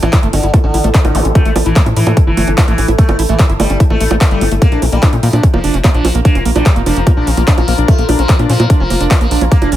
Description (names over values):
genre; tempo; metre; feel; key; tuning
psychedelic trance; 147 BPM; 4/4; straight; unclear; A4 = 441 Hz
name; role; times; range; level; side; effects
sitar; melody; 0.0-9.7 s; D3 to Bb3; -21 LUFS; equal; phaser, sidechain pumping, tape echo
overdriven acid bass; riff; 0.0-9.8 s; G3 to E4; -19 LUFS; moving between left 8 dB and right 8 dB; distortion, auto-pan, sidechain pumping, tape echo
tight sequencer bass; bass; 0.0-9.8 s; F1 to Bb2; -14 LUFS; equal; none
big-room dance drum kit; drums; 0.0-9.8 s; bongos, handclaps, hi-hat; -18 LUFS; right 2 dB; none
deep dark ambient pad; texture; 0.0-9.8 s; E4 to Bb5; -22 LUFS; left 1 dB; chorus, built-in reverb, sidechain pumping
electronic kick drum; drums; 0.1-9.6 s; none; -10 LUFS; equal; none
zap; sound effects; 1.1-1.3 s; none; -23 LUFS; equal; none
room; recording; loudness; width
digital ambience; none; -9 LUFS; side -13 dB against mid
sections
0.0-9.8 A section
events
none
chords
0.0 A5; 4.6 Bb5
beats
0.13 0.54 0.94 | 1.35 1.76 2.17 2.58 | 2.98 3.39 3.80 4.21 | 4.62 5.03 5.43 5.84 | 6.25 6.66 7.07 7.47 | 7.88 8.29 8.70 9.11 | 9.52